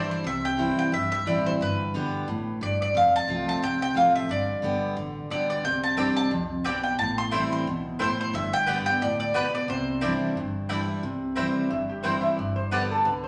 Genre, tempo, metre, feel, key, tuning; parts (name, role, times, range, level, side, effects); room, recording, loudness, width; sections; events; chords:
bluegrass; 178 BPM; 4/4; swing 56% on 8ths; C major; A4 = 443 Hz
mandolin; melody; 0.0-10.8 s; B4 to C6; -28 LUFS; equal
picked steel-string acoustic guitar; accompaniment; 0.0-13.3 s; F2 to G4; -30 LUFS; equal
upright bass; bass; 0.2-13.3 s; F1 to D2; -42 LUFS; equal
mandolin; stabs; 6.0-12.8 s; A3 to A5; -34 LUFS; equal
lap resonator guitar; second line; 11.7-13.3 s; G4 to E5; -29 LUFS; equal
wet large studio reverb, RT60 1.3 s; -26 LUFS; mono
0.2-11.0 A section; 11.0-13.3 B section
resonator guitar played with a steel bar solo 11.0-13.3
0.2 C; 1.6 G; 2.9 F; 4.3 G; 5.6 Csus2; 7.0 Am7; 8.3 G; 9.7 Cadd9; 11.0 C; 12.4 G